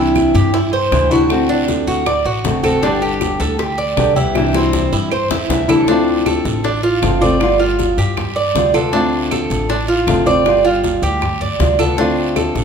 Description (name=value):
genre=latin, Cuban son and guajira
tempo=157 BPM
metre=4/4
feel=straight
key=unclear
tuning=A4 = 441 Hz
part: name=nylon-string guitar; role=accompaniment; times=0.0-12.6 s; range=C3 to G4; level=-18 LUFS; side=left 2 dB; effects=none
part: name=Cuban tres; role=arpeggios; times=0.0-12.6 s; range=C4 to D5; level=-17 LUFS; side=right 3 dB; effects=none
part: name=upright bass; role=bass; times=0.0-12.6 s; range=G1 to G2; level=-22 LUFS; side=equal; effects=none
part: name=bongos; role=percussion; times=0.2-12.6 s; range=none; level=-25 LUFS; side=left 6 dB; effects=none
part: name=claves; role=percussion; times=0.2-12.6 s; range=none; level=-31 LUFS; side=right 5 dB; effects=none
part: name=congas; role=percussion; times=0.2-12.6 s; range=none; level=-26 LUFS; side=left 2 dB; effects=none
part: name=guiro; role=percussion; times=0.2-12.6 s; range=none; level=-30 LUFS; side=right 4 dB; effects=none
room=moderate large studio reverb, RT60 1.4 s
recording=band playing live in one room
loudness=-13 LUFS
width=side -6 dB against mid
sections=0.0-5.9 A section; 5.9-12.6 B section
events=drum fill 4.4-5.9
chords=0.0 Cadd9; 1.3 D7; 2.8 Gadd9; 4.4 Cadd9; 5.9 Dm7; 7.4 G7; 8.9 Dm7; 10.5 G7; 12.0 Dm7